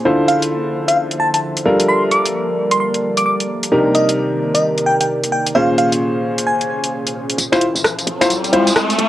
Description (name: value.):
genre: UK garage, two-step garage.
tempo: 131 BPM.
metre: 4/4.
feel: swing 62% on 16ths.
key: unclear.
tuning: A4 = 441 Hz.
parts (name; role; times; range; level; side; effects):
ethereal airy pad; sustained chords; 0.0-9.1 s; Bb2 to A5; -25 LUFS; equal; ensemble chorus, built-in reverb, cassette tape.
warm grand piano; stabs; 0.0-8.7 s; Bb2 to C5; -17 LUFS; equal; low-pass filter, cassette tape, tape echo.
bell-like FM electric piano; melody; 0.3-6.9 s; Eb5 to D6; -18 LUFS; equal; chorus, phaser, cassette tape, tape echo.
garage drum kit; drums; 0.3-9.1 s; finger snaps, hi-hat, rim click, tambourine; -19 LUFS; equal; high-pass filter on hats, small room reverb, cassette tape, high-pass filter on perc, high-pass filter on snare.
hollow knocking FM bass; bass; 7.4-9.1 s; D1 to A1; -25 LUFS; equal; high-pass filter.
riser; sound effects; 7.8-9.1 s; none; -20 LUFS; left 1 dB; none.
room: moderate studio reverb, RT60 0.5 s.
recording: home recording on cassette.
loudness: -14 LUFS.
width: side -14 dB against mid.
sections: 0.0-7.4 A section; 7.4-9.1 B section.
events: filter sweep on ambient pad 0.0-7.4; build-up 7.4-9.1; riser 7.8-9.1.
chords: 0.1 Dm9; 1.7 Gm9; 3.7 Cm9; 5.5 Bbm9; 7.4 Dm9.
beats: | 0.05 0.51 0.97 1.43 | 1.89 2.34 2.80 3.26 | 3.72 4.18 4.63 5.09 | 5.55 6.01 6.47 6.92 | 7.38 7.84 8.30 8.76.